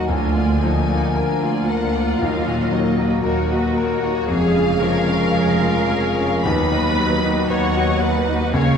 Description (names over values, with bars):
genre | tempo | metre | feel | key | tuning
classical, romantic movement for piano and orchestra | 57 BPM | 4/4 | rubato | unclear | A4 = 440 Hz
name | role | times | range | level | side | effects
clear concert grand piano | melody | 0.0-8.8 s | C#2 to B4 | -21 LUFS | left 2 dB | none
warm symphonic violin section | melody | 0.0-8.8 s | B4 to B5 | -26 LUFS | left 4 dB | none
rich symphonic violin section | second line | 0.0-8.8 s | C#4 to E#5 | -29 LUFS | left 1 dB | none
clear symphonic viola section | accompaniment | 0.0-8.8 s | D#4 to C#5 | -25 LUFS | right 1 dB | none
mellow French horn section | sustained chords | 0.0-8.8 s | E#3 to C#4 | -25 LUFS | left 1 dB | none
rich chamber double bass section | bass | 0.1-8.8 s | E#1 to D#2 | -25 LUFS | right 2 dB | none
rich symphonic cello section | bass | 0.1-8.8 s | D2 to C#3 | -25 LUFS | right 3 dB | none
room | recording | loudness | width
wet recital hall reverb, RT60 1.7 s | heard from further back in the room | -16 LUFS | side -7 dB against mid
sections
0.0-8.8 A section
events
none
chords
0.1 A#/D; 2.2 D#m; 4.3 C#/E#; 6.4 B/D#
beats
| 0.08 1.15 2.19 3.23 | 4.27 5.32 6.43 7.48 | 8.52